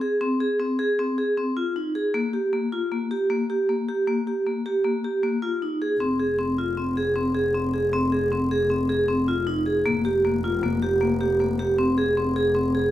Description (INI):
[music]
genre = contemporary instrumental, chamber music in an uneven meter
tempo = 156 BPM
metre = 5/4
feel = straight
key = F minor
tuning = A4 = 440 Hz
[part]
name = vibraphone with medium hard mallets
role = arpeggios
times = 0.0-12.9 s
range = Bb3 to Ab4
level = -22 LUFS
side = equal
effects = none
[part]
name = dark double bass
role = bass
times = 6.0-12.9 s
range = F1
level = -30 LUFS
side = equal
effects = none
[sound]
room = moderate recital hall reverb, RT60 1.7 s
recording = minimal, uncompressed stereo recording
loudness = -21 LUFS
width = side -13 dB against mid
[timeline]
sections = 0.0-12.9 A section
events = none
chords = 0.0 Fm (rootless); 2.1 Eb (rootless); 6.0 Fm; 9.9 Fsus24; 11.8 Fm